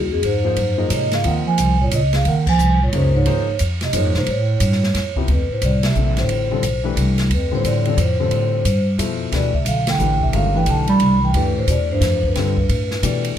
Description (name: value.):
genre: modal jazz.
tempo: 178 BPM.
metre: 3/4.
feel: swing 63% on 8ths.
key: Eb dorian, D dorian from 5.3 s.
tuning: A4 = 438 Hz.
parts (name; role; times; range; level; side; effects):
vibraphone with soft mallets; melody; 0.0-13.2 s; Gb4 to B5; -22 LUFS; equal; none.
dark bass clarinet; second line; 0.0-13.2 s; F2 to G3; -21 LUFS; right 2 dB; none.
warm grand piano; accompaniment; 0.0-13.4 s; B2 to Eb5; -26 LUFS; left 8 dB; none.
upright bass; bass; 0.0-13.4 s; G1 to B2; -20 LUFS; equal; none.
open jazz drum kit; drums; 0.2-13.3 s; crash cymbal, hi-hat, kick drum, ride cymbal, snare drum; -26 LUFS; right 1 dB; none.
room: little or no reverb.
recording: close, detailed microphones.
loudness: -16 LUFS.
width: side -10 dB against mid.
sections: 0.0-5.3 A section; 5.3-13.4 B section.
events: band accent 2.4, 5.8, 9.8.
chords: 0.0 Fm; 1.2 Ebsus2; 3.3 Fm/Eb; 4.3 A7b13; 5.3 Dm9; 9.3 G.